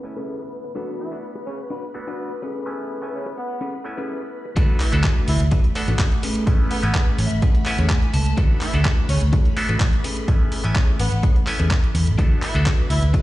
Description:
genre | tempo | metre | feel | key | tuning
filtered disco house | 126 BPM | 4/4 | straight | A major | A4 = 436 Hz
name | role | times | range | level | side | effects
bright clav | accompaniment | 0.0-13.2 s | A3 to G#5 | -31 LUFS | equal | phaser, sidechain pumping, low-pass filter
string machine, full ensemble | sustained chords | 0.0-13.2 s | A3 to B5 | -31 LUFS | right 1 dB | ensemble chorus, sidechain pumping, low-pass filter
electric guitar at the edge of break-up | riff | 0.0-13.2 s | C#4 to A5 | -32 LUFS | left 3 dB | sidechain pumping, low-pass filter
downlifter and sub drop | sound effects | 0.0-0.8, 4.6-6.5 s | none | -30 LUFS | equal | none
bright horn section | melody | 1.0-13.0 s | C#3 to E4 | -31 LUFS | equal | vintage 12-bit sampler grit, sidechain pumping, low-pass filter, ping-pong delay
vintage muted fingered electric bass | bass | 4.6-13.1 s | A1 to E2 | -20 LUFS | equal | sidechain pumping, low-pass filter
dusty soul sampler-style drum kit | drums | 4.6-13.2 s | handclaps, hi-hat | -29 LUFS | equal | low-pass filter on snare, sidechain pumping on hats, low-pass filter on hats, low-pass filter on room
electronic kick drum | drums | 4.6-13.2 s | none | -19 LUFS | equal | none
room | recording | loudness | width
digital ambience | played on a big sound system in a bare room, large studio reverb, nothing above 10.8 kHz | -18 LUFS | side -16 dB against mid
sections
0.0-4.6 A section; 4.6-13.2 B section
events
filter sweep 0.0-4.6; drop 4.6-13.2; impact 4.6-6.5; clean electric guitar fill 6.9-8.4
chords
0.0 Amaj9; 0.8 D6; 2.4 Amaj9; 4.6 D6; 6.2 Amaj9; 8.4 D6; 10.0 Amaj9; 12.2 D6

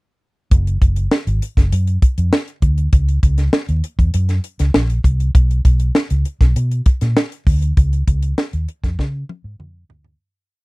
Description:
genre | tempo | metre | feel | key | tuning
polished 1980s jazz-funk pop | 99 BPM | 4/4 | straight | unclear | A4 = 441 Hz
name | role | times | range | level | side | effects
vintage muted fingered electric bass | bass | 0.5-10.1 s | F#1 to C#3 | -16 LUFS | equal | none
tight funk drum kit | drums | 0.5-10.2 s | hi-hat, kick drum, snare drum, toms | -14 LUFS | equal | none
room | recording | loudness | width
light reverb | dry, close 1970s-style studio recording | -14 LUFS | side -24 dB against mid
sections
0.5-10.2 verse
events
fade-out 7.8-10.2; drum fill 9.0-10.2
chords
none

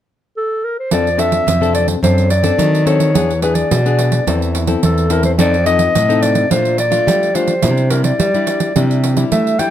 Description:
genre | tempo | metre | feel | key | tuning
samba and choro | 107 BPM | 4/4 | straight | F major | A4 = 440 Hz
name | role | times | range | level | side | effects
mellow clarinet | melody | 0.4-9.7 s | A4 to G5 | -17 LUFS | equal | none
nylon-string guitar | accompaniment | 0.9-9.7 s | Bb2 to A4 | -19 LUFS | left 6 dB | none
nylon-string guitar | bass | 0.9-9.7 s | E2 to A3 | -17 LUFS | equal | none
pandeiro | percussion | 0.9-9.7 s | none | -19 LUFS | right 5 dB | none
room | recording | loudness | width
light reverb | close, detailed microphones | -12 LUFS | side -10 dB against mid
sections
0.9-9.7 A section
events
none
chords
0.0 N.C.; 0.9 F6; 2.0 D7/F#; 3.2 E7; 4.3 Am/E; 5.4 F7; 6.5 Bbmaj7; 7.6 Cadd9

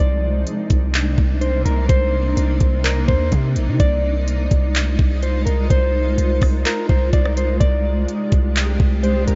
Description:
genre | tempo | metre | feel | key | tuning
hip hop, atmospheric cloud-rap | 126 BPM | 4/4 | half-time | C minor | A4 = 440 Hz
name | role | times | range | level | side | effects
mellow electric guitar | melody | 0.0-9.4 s | Bb4 to D5 | -27 LUFS | equal | subtle chorus, digital delay
granular cloud pad | sustained chords | 0.0-9.4 s | C3 to G4 | -27 LUFS | equal | built-in reverb, ensemble chorus, sidechain pumping
long sustained 808-style bass | bass | 0.0-9.4 s | Bb1 to C3 | -21 LUFS | equal | none
trap drum kit | drums | 0.5-9.4 s | handclaps, hi-hat, kick drum, rim click | -22 LUFS | equal | none
room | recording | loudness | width
moderate huge ambient reverb, RT60 9.0 s | dreamy mix soaked in reverb, nothing above 7.6 kHz | -18 LUFS | mono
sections
0.0-9.4 A section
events
none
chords
0.0 Cm9; 3.8 Fm7/C; 7.6 Bb13/C (rootless)

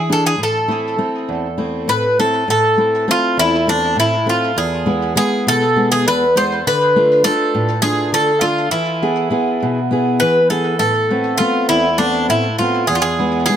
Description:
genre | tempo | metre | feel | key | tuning
greek folk | 202 BPM (eighths) | 7/8 | straight | A harmonic minor | A4 = 440 Hz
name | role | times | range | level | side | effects
Greek bouzouki | melody | 0.0-13.6 s | D4 to C5 | -16 LUFS | equal | tape echo
fingerpicked steel-string acoustic guitar | accompaniment | 0.0-13.6 s | E2 to G#4 | -18 LUFS | equal | none
room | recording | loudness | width
light reverb | close, detailed microphones | -14 LUFS | side -9 dB against mid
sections
0.0-2.5 A section; 2.5-13.6 B section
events
none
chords
0.4 Am; 4.6 E; 6.6 Dm; 8.7 E; 10.8 Amadd9; 12.9 E

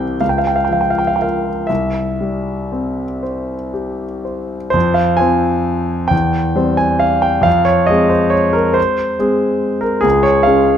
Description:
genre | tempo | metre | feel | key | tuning
classical, romantic nocturne for solo piano | 38-48 BPM (dotted quarters) | 6/8 | rubato | F minor | A4 = 438 Hz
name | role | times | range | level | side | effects
warm concert grand piano | solo | 0.0-10.8 s | C2 to Ab5 | -13 LUFS | equal | none
room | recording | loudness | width
moderate recital hall reverb, RT60 1.5 s | none | -13 LUFS | side -9 dB against mid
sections
0.0-4.7 A section; 4.7-10.8 A section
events
none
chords
0.2 Bbm/Db; 1.7 C; 4.7 Fm; 6.1 C/E; 7.5 Fm; 10.0 Db

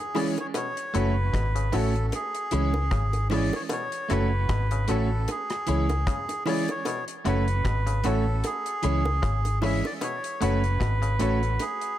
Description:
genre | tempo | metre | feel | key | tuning
roots reggae | 76 BPM | 4/4 | swing 56% on 16ths | F# minor | A4 = 440 Hz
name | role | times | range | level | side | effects
melodica | melody | 0.0-12.0 s | G#4 to E5 | -30 LUFS | right 2 dB | tape echo
clean electric guitar | accompaniment | 0.1-11.4 s | E3 to F#4 | -31 LUFS | right 6 dB | spring reverb, tape echo
bright upright piano | stabs | 0.1-11.5 s | E4 to C#5 | -33 LUFS | left 8 dB | none
bongos | percussion | 0.1-11.8 s | none | -36 LUFS | right 2 dB | none
muted clav | arpeggios | 0.2-11.4 s | A2 to C#3 | -38 LUFS | left 8 dB | none
deep reggae drum kit | drums | 0.2-12.0 s | hi-hat, kick drum, rim click | -32 LUFS | left 1 dB | tape echo
vintage muted fingered electric bass | bass | 1.0-11.6 s | F#1 to C#2 | -25 LUFS | equal | none
room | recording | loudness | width
studio ambience | echo-heavy mix | -23 LUFS | side -12 dB against mid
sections
0.0-12.0 A section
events
none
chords
0.0 C#m; 0.5 F#m; 2.1 C#m; 3.7 F#m; 5.3 C#m; 6.9 F#m; 8.4 C#m; 10.0 F#m

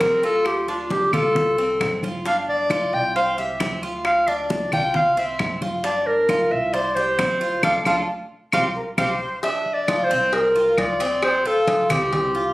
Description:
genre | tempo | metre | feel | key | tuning
latin, Cuban son and guajira | 134 BPM | 4/4 | straight | unclear | A4 = 437 Hz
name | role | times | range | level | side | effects
warm clarinet | melody | 0.0-12.5 s | F4 to G5 | -20 LUFS | equal | none
Cuban tres | arpeggios | 0.0-12.5 s | C4 to C5 | -26 LUFS | right 1 dB | none
upright bass | bass | 0.0-12.5 s | G1 to D2 | -35 LUFS | equal | none
bongos and cowbell | percussion | 0.0-12.3 s | none | -30 LUFS | left 3 dB | none
claves | percussion | 0.0-12.1 s | none | -26 LUFS | equal | none
congas | percussion | 0.0-12.5 s | none | -29 LUFS | equal | none
breathy bright jazz flute | second line | 8.8-9.4 s | Bb4 to C5 | -29 LUFS | left 1 dB | none
room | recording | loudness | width
moderate small room ambience, RT60 0.5 s | recorded on a phone in the room, studio reverb | -18 LUFS | side -19 dB against mid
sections
0.0-9.4 A section; 9.4-12.5 B section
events
band accent 7.6-9.4; drum fill 9.2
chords
0.5 Dm7; 1.4 Csus4; 2.3 G5; 3.2 Csus4; 4.1 Dm7; 4.9 Csus4; 5.8 Gm7; 6.7 Csus4; 7.6 Dm; 8.5 Csus4; 9.4 Dm7

